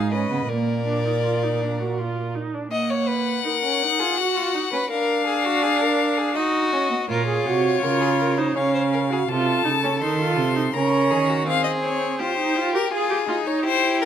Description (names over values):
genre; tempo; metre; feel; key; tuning
classical, baroque-style fugue for string quartet; 82 BPM; 3/4; straight; Eb minor, Bb minor from 7.1 s; A4 = 441 Hz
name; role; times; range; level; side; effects
rich violin; melody; 0.0-14.1 s; Ab4 to C6; -25 LUFS; left 8 dB; none
rich violin; second line; 0.0-14.1 s; Eb4 to Eb5; -26 LUFS; left 2 dB; none
dark viola; accompaniment; 0.0-14.1 s; Bb3 to Bb4; -24 LUFS; right 4 dB; none
warm cello; bass; 0.0-2.3, 7.1-11.5 s; Ab2 to Eb3; -25 LUFS; right 4 dB; none
room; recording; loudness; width
moderate recital hall reverb, RT60 1.4 s; close, detailed microphones; -19 LUFS; side -9 dB against mid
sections
0.0-2.7 A section; 2.7-7.1 B section; 7.1-14.1 C section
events
none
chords
0.0 Fdim/Ab; 0.5 Bb; 2.7 Ebm/Bb; 4.2 Gb5; 4.9 Bb7/D; 6.4 Ebm; 7.1 Bbm; 8.6 Db; 9.3 F7/C; 10.7 Bbm/Db; 11.5 Fm/C; 12.9 Ab5